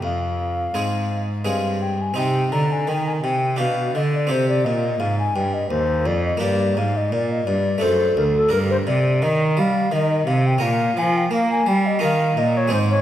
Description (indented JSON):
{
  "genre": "classical, baroque-style sonata movement with continuo",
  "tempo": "85 BPM",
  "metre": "3/4",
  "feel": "straight",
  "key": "C minor",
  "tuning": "A4 = 439 Hz",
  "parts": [
    { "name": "baroque flute", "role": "melody", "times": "0.0-13.0 s", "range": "A4 to Bb5", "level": "-23 LUFS", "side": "left 2 dB", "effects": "none" },
    { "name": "harpsichord", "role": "accompaniment", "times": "0.0-13.0 s", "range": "D2 to C5", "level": "-23 LUFS", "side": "equal", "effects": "none" },
    { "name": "rich cello", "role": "bass", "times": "0.0-13.0 s", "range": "D2 to Bb3", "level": "-22 LUFS", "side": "right 1 dB", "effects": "none" }
  ],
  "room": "moderate scoring stage reverb, RT60 1.9 s",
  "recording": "none",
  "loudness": "-18 LUFS",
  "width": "side -12 dB against mid",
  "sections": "0.0-2.2 A section; 2.2-13.0 A section",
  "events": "none",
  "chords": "0.0 Fm; 2.2 Cm; 3.6 G7/B; 4.3 Cm; 6.4 Gm; 7.8 D7/F#; 8.5 Gm; 10.6 Bbm; 12.0 Eb5"
}